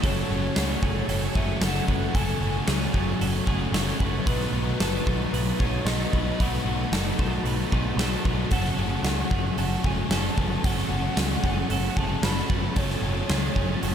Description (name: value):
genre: rock, shoegaze and dream pop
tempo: 113 BPM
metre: 4/4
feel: straight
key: unclear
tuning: A4 = 438 Hz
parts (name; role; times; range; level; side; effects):
- pure sine lead; melody; 0.0-13.9 s; B4 to B5; -35 LUFS; left 1 dB; chorus, digital delay
- ensemble organ-string; sustained chords; 0.0-13.9 s; A4 to D#6; -38 LUFS; equal; phaser, ensemble chorus
- twelve-string electric guitar; arpeggios; 0.0-13.9 s; G#4 to B4; -38 LUFS; right 9 dB; lush chorus, digital delay
- crunchy overdriven guitar; riff; 0.0-13.9 s; F#2 to F#4; -33 LUFS; right 11 dB; reverse reverb
- overdriven semi-hollow guitar; riff; 0.0-13.9 s; F#2 to F#4; -32 LUFS; left 12 dB; wide subtle chorus
- raw garage guitar; riff; 0.0-13.9 s; F#2 to D#4; -34 LUFS; equal; overdrive
- growling picked electric bass; bass; 0.0-13.9 s; F#1 to C#2; -28 LUFS; equal; overdrive
- huge arena drum kit; drums; 0.0-13.9 s; hi-hat, kick drum, snare drum; -27 LUFS; equal; none
room: little or no reverb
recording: none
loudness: -22 LUFS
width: side -8 dB against mid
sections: 0.0-13.9 A section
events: none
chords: 0.0 F#madd9; 4.3 B7; 8.5 F#madd9